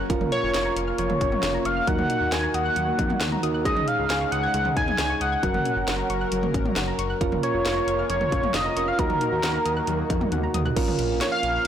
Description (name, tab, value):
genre	synth-pop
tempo	135 BPM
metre	4/4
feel	straight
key	Bb minor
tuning	A4 = 441 Hz
part	soft electric-piano-like synth keys	accompaniment	0.0-11.7 s	Db4 to Bb4	-29 LUFS	right 5 dB	chorus
part	chorused pulse-width pad	sustained chords	0.0-11.7 s	Db3 to Bb4	-33 LUFS	left 2 dB	none
part	soft round pluck	arpeggios	0.0-10.7 s	F3 to Ab6	-32 LUFS	left 3 dB	chorus, tape echo
part	smooth gliding synth bass	bass	0.0-11.6 s	F1 to F2	-30 LUFS	equal	none
part	house drum kit	drums	0.1-11.7 s	crash cymbal, hi-hat, kick drum, snare drum, toms	-28 LUFS	equal	none
part	octave-doubled lead	melody	0.3-11.7 s	Bb4 to Ab5	-26 LUFS	equal	chorus
room	moderate lush hall reverb, RT60 2.4 s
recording	blown-out, overdriven recording, overdrive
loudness	-21 LUFS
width	side -9 dB against mid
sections	0.0-10.8 A section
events	drum fill 10.3-10.8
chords	0.1 Bbm/F; 1.9 Ebm; 3.7 Dbsus2; 5.4 Gb; 7.2 Bbm/F; 9.0 Ebm; 10.8 Bbm